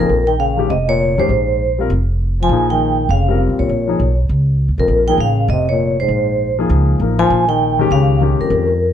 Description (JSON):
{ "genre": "jazz", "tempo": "200 BPM", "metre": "4/4", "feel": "swing 62% on 8ths", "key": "Bb dorian", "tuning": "A4 = 440 Hz", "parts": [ { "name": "vibraphone with medium mallets", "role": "melody", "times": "0.0-8.9 s", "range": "A#4 to Ab5", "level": "-18 LUFS", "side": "right 2 dB", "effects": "plate reverb" }, { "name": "mellow trombone", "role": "second line", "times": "0.0-8.9 s", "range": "F2 to F3", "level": "-20 LUFS", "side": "left 6 dB", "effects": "none" }, { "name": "dark concert grand piano", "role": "accompaniment", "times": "0.0-8.7 s", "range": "Eb3 to Bb4", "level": "-19 LUFS", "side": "left 5 dB", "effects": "none" }, { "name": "upright bass", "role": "bass", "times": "0.0-8.9 s", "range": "F1 to F2", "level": "-17 LUFS", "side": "right 1 dB", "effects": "none" } ], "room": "light reverb", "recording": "dark, warm production", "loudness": "-13 LUFS", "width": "side -9 dB against mid", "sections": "0.1-8.9 A section", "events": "none", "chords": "0.1 Bbm11", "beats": "| 0.10 0.40 0.70 1.00 | 1.30 1.60 1.90 2.20 | 2.50 2.80 3.10 3.40 | 3.70 4.00 4.30 4.61 | 4.91 5.21 5.51 5.81 | 6.11 6.41 6.71 7.01 | 7.31 7.61 7.91 8.21 | 8.51 8.81" }